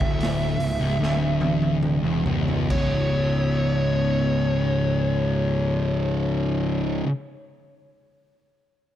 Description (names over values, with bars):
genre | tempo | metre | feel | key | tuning
stoner and doom metal | 66-78 BPM | 4/4 | straight | C# minor | A4 = 440 Hz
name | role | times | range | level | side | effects
fuzz lead guitar | melody | 0.0-7.0 s | C#5 to E5 | -29 LUFS | equal | distortion, tape echo
thick fuzz guitar | riff | 0.0-7.1 s | C#2 to C#3 | -23 LUFS | equal | distortion
fuzz picked electric bass | bass | 0.0-7.0 s | C#1 to E1 | -28 LUFS | equal | overdrive
raw garage drum kit | drums | 0.0-2.9 s | crash cymbal, hi-hat, kick drum, snare drum, toms | -28 LUFS | equal | none
room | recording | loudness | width
small room ambience | dark, warm production | -20 LUFS | side -11 dB against mid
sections
0.0-2.7 A section; 2.7-6.3 B section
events
slowing down 0.0-2.7; drum fill 1.0-2.7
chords
0.0 C#m; 2.7 C#5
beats
0.19 0.99 1.82 | 2.70 3.61 4.51 5.42